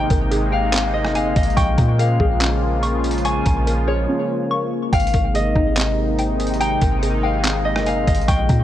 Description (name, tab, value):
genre	hip hop, atmospheric cloud-rap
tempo	143 BPM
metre	4/4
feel	half-time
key	Ab major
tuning	A4 = 440 Hz
part	concert harp	melody	0.0-8.6 s	Db5 to Ab5	-24 LUFS	left 2 dB	low-pass filter, tape echo
part	sweeping resonant pad	sustained chords	0.0-8.6 s	C3 to F4	-23 LUFS	left 1 dB	chorus, sidechain pumping
part	hollow square pluck	arpeggios	0.0-8.6 s	C4 to Db6	-27 LUFS	equal	chorus, low-pass filter, tape echo
part	soft 808-style bass	bass	0.0-8.6 s	G1 to Bb2	-21 LUFS	equal	transformer saturation
part	trip hop sampler-style drum kit	drums	0.1-8.6 s	handclaps, hi-hat, kick drum, rim click	-21 LUFS	equal	overdrive
room	little or no reverb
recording	dry, gritty hardware recording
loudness	-16 LUFS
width	side -12 dB against mid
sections	0.0-8.6 A section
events	break 4.1-4.9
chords	0.0 Abmaj9; 1.6 Bbm7; 4.9 Abmaj9